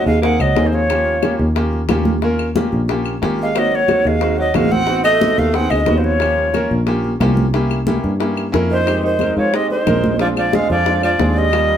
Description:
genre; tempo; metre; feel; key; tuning
Afro-Cuban jazz; 180 BPM; 4/4; straight; Eb mixolydian; A4 = 441 Hz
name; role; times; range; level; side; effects
breathy bright jazz flute; melody; 0.0-1.4, 3.4-6.7, 8.7-11.8 s; C5 to F#5; -18 LUFS; equal; none
clear tenor saxophone; second line; 0.0-1.4, 3.4-11.8 s; Eb3 to C4; -21 LUFS; right 4 dB; none
bright upright piano; accompaniment; 0.0-11.8 s; G3 to Bb4; -21 LUFS; equal; none
fingered electric bass; bass; 0.1-11.8 s; Ab1 to Ab2; -19 LUFS; equal; none
bongos; percussion; 0.1-11.7 s; none; -24 LUFS; left 8 dB; none
congas; percussion; 0.1-11.8 s; none; -24 LUFS; equal; none
claves; percussion; 0.4-11.7 s; none; -31 LUFS; left 6 dB; none
room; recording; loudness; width
moderate studio reverb, RT60 0.5 s; band playing live in one room; -14 LUFS; side -9 dB against mid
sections
0.0-11.8 A section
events
none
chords
0.0 Ab9; 0.9 Eb9; 3.6 Ab9; 4.9 Adim7; 6.2 Eb9; 7.5 C7b9; 8.9 Fm7; 10.2 Bb9

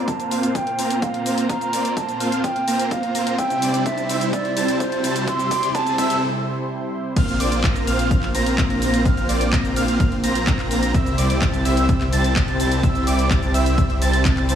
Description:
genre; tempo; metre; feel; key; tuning
EDM, festival progressive house; 127 BPM; 4/4; straight; unclear; A4 = 440 Hz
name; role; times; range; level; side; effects
mellow silver concert flute; melody; 0.0-6.2 s; C5 to C6; -24 LUFS; right 2 dB; digital delay
lush unison pad; sustained chords; 0.0-14.6 s; Bb2 to C5; -28 LUFS; equal; chorus, sidechain pumping
wide unison lead; arpeggios; 0.0-14.6 s; D6 to Bb6; -29 LUFS; right 1 dB; sidechain pumping, digital delay
supersaw chords; riff; 0.0-14.6 s; G3 to Bb5; -23 LUFS; right 1 dB; sidechain pumping, low-pass filter, digital delay
riser; sound effects; 1.9-6.2 s; none; -32 LUFS; equal; none
electronic kick drum; drums; 0.1-14.3 s; none; -22 LUFS; equal; high-pass filter on kick
house drum kit; drums; 0.1-14.6 s; crash cymbal, handclaps, hi-hat, shaker; -28 LUFS; left 1 dB; none
wide detuned saw bass; bass; 7.2-14.6 s; Bb1 to C2; -23 LUFS; equal; chorus, sidechain pumping
room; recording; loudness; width
moderate recital hall reverb, RT60 1.5 s; small room ambience; -18 LUFS; side -9 dB against mid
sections
0.0-7.2 A section; 7.2-14.6 B section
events
build-up 0.0-7.2; filter sweep on supersaw synth 0.0-7.2; filter sweep on analog synth lead 0.0-7.2; filter sweep on analog synth pad 0.0-7.2; riser 1.9-6.2; drum fill 3.4-6.2; break 6.2-7.2; drop 7.2-14.6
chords
0.0 Bbsus2; 3.4 C; 7.2 Bbsus2; 10.9 C

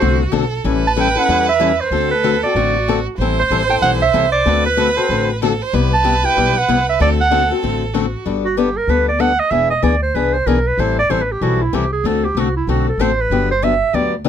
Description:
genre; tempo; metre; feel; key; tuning
acoustic string swing (jazz manouche); 190 BPM; 4/4; swing 60% on 8ths; G major; A4 = 440 Hz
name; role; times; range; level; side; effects
clear clarinet; melody; 0.0-14.1 s; E4 to A5; -16 LUFS; right 4 dB; none
rich violin; second line; 0.0-8.3 s; F#4 to C5; -22 LUFS; right 6 dB; none
picked acoustic archtop guitar; accompaniment; 0.0-14.3 s; C3 to A4; -19 LUFS; left 8 dB; none
upright bass; bass; 0.0-14.3 s; E1 to E2; -21 LUFS; equal; none
room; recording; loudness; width
little or no reverb; close, detailed microphones; -14 LUFS; side -9 dB against mid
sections
0.0-8.3 A section; 8.3-14.3 B section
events
clarinet solo 8.3-14.3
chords
0.0 D7; 0.6 A7; 1.9 D7; 3.2 Am7; 4.5 D7; 5.7 Cmaj7; 7.0 D7; 8.3 Gadd9; 9.5 E7; 10.8 Am7; 12.0 D7; 13.3 Gmaj7

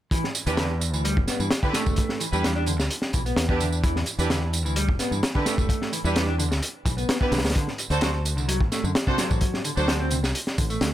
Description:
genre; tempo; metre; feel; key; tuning
breakbeat, breaks; 129 BPM; 4/4; straight; E minor; A4 = 440 Hz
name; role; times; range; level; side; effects
mellow electric guitar; riff; 0.1-10.9 s; C3 to D4; -30 LUFS; equal; vintage 12-bit sampler grit, tape echo
crunchy breakbeat drum kit; drums; 0.1-10.9 s; hi-hat, kick drum, snare drum; -25 LUFS; equal; none
tambourine; drums; 0.1-10.9 s; none; -34 LUFS; right 7 dB; none
warm studio string section; stabs; 0.5-9.9 s; D4 to C5; -30 LUFS; right 3 dB; tape echo
modern bright fingered electric bass; bass; 0.5-10.9 s; E1 to G2; -26 LUFS; equal; tube saturation
room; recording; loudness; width
little or no reverb; none; -22 LUFS; side -13 dB against mid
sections
0.1-10.9 A section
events
none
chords
0.1 Em7; 7.6 D7

